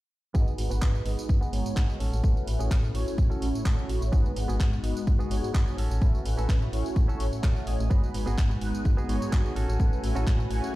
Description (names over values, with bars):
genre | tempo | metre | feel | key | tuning
filtered disco house | 127 BPM | 4/4 | swing 53% on 16ths | G# phrygian | A4 = 439 Hz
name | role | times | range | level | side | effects
mellow synth brass | accompaniment | 0.3-10.8 s | G#3 to C#5 | -33 LUFS | equal | chorus, phaser, sidechain pumping, low-pass filter
direct-recorded clean electric guitar | riff | 0.3-10.5 s | B3 to F#5 | -38 LUFS | right 4 dB | vintage 12-bit sampler grit, sidechain pumping, low-pass filter
slap-like FM bass | bass | 0.3-10.6 s | G#1 to A2 | -28 LUFS | equal | tube saturation, sidechain pumping, low-pass filter
electronic kick drum | drums | 0.3-10.4 s | none | -24 LUFS | equal | none
house drum kit | drums | 0.3-10.7 s | handclaps, hi-hat, tambourine | -40 LUFS | right 1 dB | sidechain pumping on perc, sidechain pumping on hats
tambourine | percussion | 0.3-10.7 s | none | barely audible | none | none
string machine, full ensemble | sustained chords | 7.9-10.8 s | F#4 to G#5 | -39 LUFS | equal | ensemble chorus, sidechain pumping, low-pass filter
room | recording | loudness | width
digital ambience | played on a big sound system in a bare room, stone room reverb | -24 LUFS | side -17 dB against mid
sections
0.3-10.8 A section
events
filter sweep 0.3-10.8; clean electric guitar fill 7.2-7.9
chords
0.3 G#m7; 2.0 A6; 4.1 G#m7; 5.8 A6; 7.9 G#m7; 9.6 A6